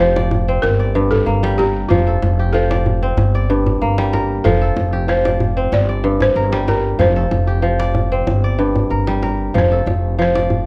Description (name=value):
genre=west african traditional, West African string and xylophone music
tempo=94 BPM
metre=4/4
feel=straight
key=F major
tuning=A4 = 438 Hz
part: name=balafon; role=melody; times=0.0-10.7 s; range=F4 to D5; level=-22 LUFS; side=equal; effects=none
part: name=kora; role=arpeggios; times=0.0-10.7 s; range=G2 to D5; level=-21 LUFS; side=equal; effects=none
part: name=upright bass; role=bass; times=0.0-10.7 s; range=F1 to G1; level=-21 LUFS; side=equal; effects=none
part: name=djembe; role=percussion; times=0.2-10.7 s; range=none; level=-26 LUFS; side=equal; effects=none
room=light reverb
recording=none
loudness=-16 LUFS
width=mono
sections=0.0-10.7 A section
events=none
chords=0.0 F; 0.6 Gm; 1.9 F; 3.2 Gm; 4.4 F; 5.7 Gm; 7.0 F; 8.3 Gm; 9.5 F